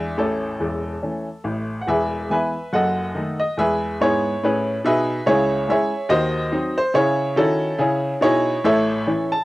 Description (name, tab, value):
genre	jazz, stride piano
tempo	142 BPM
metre	4/4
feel	swing 59% on 8ths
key	unclear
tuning	A4 = 440 Hz
part	clear upright piano	solo	0.0-9.4 s	E1 to A5	-18 LUFS	equal	none
room	moderate studio reverb, RT60 0.5 s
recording	home recording on cassette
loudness	-18 LUFS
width	side -18 dB against mid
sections	0.0-1.9 A section; 1.9-9.4 B section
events	none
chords	0.2 A; 1.9 E; 2.7 D#dim/F#; 3.6 E; 5.3 C#m; 6.1 Cdim/Eb; 7.0 C#m; 8.6 A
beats	| 0.18 0.61 1.03 1.46 | 1.88 2.30 2.73 3.15 | 3.57 4.00 4.42 4.84 | 5.26 5.69 6.11 6.53 | 6.96 7.38 7.80 8.22 | 8.65 9.07